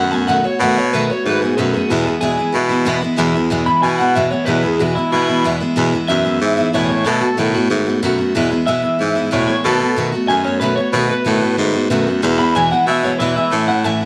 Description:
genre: rockabilly.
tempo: 186 BPM.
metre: 4/4.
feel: straight.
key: E major.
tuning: A4 = 440 Hz.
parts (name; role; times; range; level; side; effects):
electric guitar through a small old amp; melody; 0.0-14.1 s; E4 to B5; -21 LUFS; equal; lush chorus, tape echo.
picked steel-string acoustic guitar; accompaniment; 0.0-14.1 s; E2 to F#4; -20 LUFS; equal; none.
bright baritone saxophone; bass; 0.0-14.0 s; E2 to B2; -20 LUFS; equal; none.
room: light reverb.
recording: none.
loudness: -16 LUFS.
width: mono.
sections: 0.0-3.2 A section; 3.2-13.5 A section.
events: clean electric guitar solo 0.0-13.5.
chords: 0.0 B7; 1.9 E; 7.1 B7; 8.4 E; 9.6 B7; 12.2 E; 13.5 A.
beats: 0.28 | 0.60 0.92 1.25 1.57 | 1.89 2.22 2.54 2.86 | 3.19 3.51 3.83 4.15 | 4.48 4.80 5.12 5.45 | 5.77 6.09 6.41 6.74 | 7.06 7.38 7.71 8.03 | 8.35 8.67 9.00 9.32 | 9.64 9.97 10.29 10.61 | 10.94 11.26 11.58 11.91 | 12.23 12.55 12.88 13.20 | 13.52 13.85.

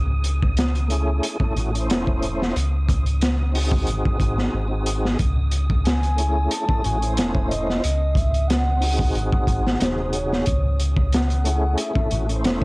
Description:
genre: trip hop.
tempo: 91 BPM.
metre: 4/4.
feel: swing 54% on 16ths.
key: C# harmonic minor.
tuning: A4 = 442 Hz.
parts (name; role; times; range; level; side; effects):
round analog bass; bass; 0.0-12.6 s; D#1 to C#2; -22 LUFS; equal; tube saturation.
wind-like tuned noise texture; texture; 0.0-12.6 s; D#6; -38 LUFS; right 2 dB; built-in reverb, cassette tape.
crunchy breakbeat drum kit; drums; 0.2-12.6 s; hi-hat, kick drum, snare drum; -22 LUFS; equal; none.
tonewheel organ; accompaniment; 0.9-12.6 s; B#2 to B#4; -27 LUFS; equal; chorus vibrato, stopped rotary speaker, tremolo, cassette tape, tape echo.
pure breathy sine lead; melody; 5.8-12.6 s; B#4 to A5; -27 LUFS; equal; chorus, phaser, cassette tape, tape echo.
room: little or no reverb.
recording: home recording on cassette.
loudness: -19 LUFS.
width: side -24 dB against mid.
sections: 0.0-12.6 A section.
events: none.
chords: 0.0 C#madd9; 1.2 A; 2.6 C#sus2; 3.9 G#7; 5.2 C#madd9; 6.5 Amaj7; 7.8 C#sus2; 9.1 G#7; 10.5 C#madd9; 11.8 Amaj7.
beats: 0.57 1.23 1.89 | 2.55 3.21 3.87 4.53 | 5.19 5.85 6.51 7.17 | 7.83 8.48 9.14 9.80 | 10.46 11.12 11.78 12.44.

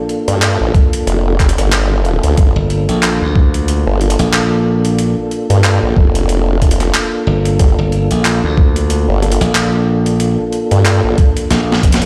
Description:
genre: glitch hop.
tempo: 92 BPM.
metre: 4/4.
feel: swing 57% on 16ths.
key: G minor.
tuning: A4 = 440 Hz.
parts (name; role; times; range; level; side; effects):
percussive tonewheel organ; stabs; 0.0-12.1 s; Bb3 to A4; -20 LUFS; equal; chorus vibrato, slow rotary speaker, sidechain pumping, delay.
boom bap sampler-style drum kit; drums; 0.1-12.1 s; handclaps, hi-hat, snare drum; -22 LUFS; equal; overdrive.
formant-sweep wobble bass; bass; 0.3-11.2 s; F1 to G2; -15 LUFS; equal; chorus, tube saturation.
electronic kick drum; drums; 0.7-12.0 s; none; -13 LUFS; equal; overdrive.
glassy slap bass; bass; 2.6-12.1 s; F1 to D2; -17 LUFS; equal; none.
room: little or no reverb.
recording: played on a big sound system in a bare room, stone room reverb.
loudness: -13 LUFS.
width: mono.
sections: 0.0-12.1 A section.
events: drum fill 11.5-12.1.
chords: 0.0 Gm9.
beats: 0.42 1.07 1.72 | 2.38 3.03 3.68 4.33 | 4.98 5.64 6.29 6.94 | 7.59 8.24 8.90 9.55 | 10.20 10.85 11.51.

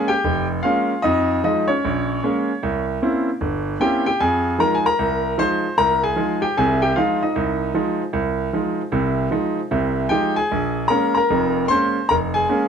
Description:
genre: solo jazz.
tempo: 152 BPM.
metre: 4/4.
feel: swing 64% on 8ths.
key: F minor.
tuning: A4 = 444 Hz.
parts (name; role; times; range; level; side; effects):
clear grand piano; solo; 0.0-12.7 s; F1 to C6; -18 LUFS; equal; none.
room: light reverb.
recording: close, detailed microphones.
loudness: -18 LUFS.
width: side -7 dB against mid.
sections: 0.0-4.2 A section; 4.2-12.7 A section.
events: none.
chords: 0.0 Bbm7; 1.0 Fm7; 1.8 Bbm7; 2.6 C7b9; 4.2 Fm7; 10.5 Bbm7.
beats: 0.25 0.64 | 1.04 1.43 1.83 2.22 | 2.62 3.01 3.40 3.80 | 4.19 4.59 4.98 5.38 | 5.77 6.17 6.56 6.95 | 7.35 7.74 8.14 8.53 | 8.93 9.32 9.71 10.11 | 10.50 10.90 11.29 11.69 | 12.08 12.47.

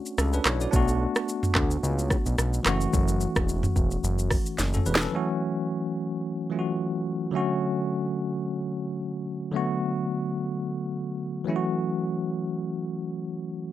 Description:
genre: afrobeats.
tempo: 109 BPM.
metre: 4/4.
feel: swing 55% on 16ths.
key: A major.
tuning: A4 = 438 Hz.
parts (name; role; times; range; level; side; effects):
bell-like tine electric piano; accompaniment; 0.0-13.7 s; D3 to D5; -27 LUFS; equal; medium stereo tremolo.
afro-pop drum kit; drums; 0.1-5.1 s; handclaps, hi-hat, kick drum, rim click, shaker, snare drum, toms; -25 LUFS; equal; none.
fat analog bass; bass; 0.2-5.1 s; E1 to D2; -26 LUFS; equal; none.
room: light reverb.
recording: none.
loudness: -25 LUFS.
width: side -13 dB against mid.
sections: 0.0-5.1 A section; 5.1-13.7 B section.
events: drum fill 4.6-5.1.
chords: 0.0 Bm7; 2.7 F#m7; 5.1 A6; 7.3 Dmaj7; 9.5 Bm7; 11.5 F#m7.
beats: 0.18 | 0.73 1.28 1.83 2.38 | 2.94 3.49 4.04 4.59 | 5.14 5.69 6.24 6.79 | 7.34 7.89 8.44 8.99 | 9.54 10.09 10.64 11.19 | 11.74 12.29 12.84 13.39.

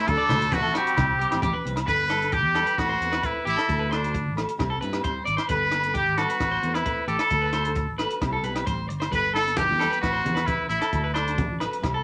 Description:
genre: highlife guitar band.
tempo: 133 BPM.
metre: 4/4.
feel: straight.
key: G major.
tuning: A4 = 439 Hz.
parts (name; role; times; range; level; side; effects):
trumpet with straight mute; melody; 0.0-11.6 s; D4 to B4; -27 LUFS; equal; none.
clear trumpet; second line; 0.0-1.4 s; A3 to D4; -35 LUFS; equal; none.
electric guitar at the edge of break-up; arpeggios; 0.0-12.0 s; E4 to D5; -32 LUFS; equal; none.
nylon-string guitar; accompaniment; 0.1-12.0 s; F#3 to B4; -37 LUFS; equal; none.
fingered electric bass; bass; 0.1-12.0 s; G1 to G2; -33 LUFS; equal; none.
compact cocktail drum kit; drums; 0.1-11.9 s; hi-hat, kick drum, rim click; -34 LUFS; equal; none.
congas; percussion; 0.1-1.7, 9.1-11.9 s; none; -34 LUFS; equal; none.
agogo bells; percussion; 0.3-11.9 s; none; -35 LUFS; equal; none.
room: moderate small room reverb, RT60 0.5 s.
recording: none.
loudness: -24 LUFS.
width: mono.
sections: 0.0-1.9 A section; 1.9-12.0 B section.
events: none.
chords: 0.1 D; 1.0 C; 1.9 Gadd9; 2.8 Amadd9; 3.7 D; 4.6 C; 5.5 Gadd9; 6.4 Amadd9; 7.3 D; 8.2 C; 9.1 Gadd9; 10.0 Amadd9; 10.9 D.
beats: | 0.07 0.52 0.97 1.43 | 1.88 2.33 2.78 3.23 | 3.69 4.14 4.59 5.04 | 5.50 5.95 6.40 6.85 | 7.31 7.76 8.21 8.66 | 9.12 9.57 10.02 10.47 | 10.93 11.38 11.83.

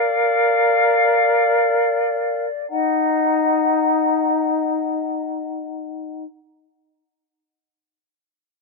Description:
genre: hip hop.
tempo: free time.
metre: none.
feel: none.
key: Eb harmonic minor.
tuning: A4 = 440 Hz.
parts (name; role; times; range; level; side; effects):
mellow hollow flute section; sustained chords; 0.0-6.2 s; Eb4 to Bb5; -17 LUFS; left 2 dB; low-pass filter.
room: light reverb, digital ambience.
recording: dry, gritty hardware recording.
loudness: -16 LUFS.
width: side -2 dB against mid.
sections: 0.0-2.7 A section; 2.7-6.0 B section.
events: filter sweep on flute section 0.0-2.7.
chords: 0.0 Bb; 2.7 Ebm.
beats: free time.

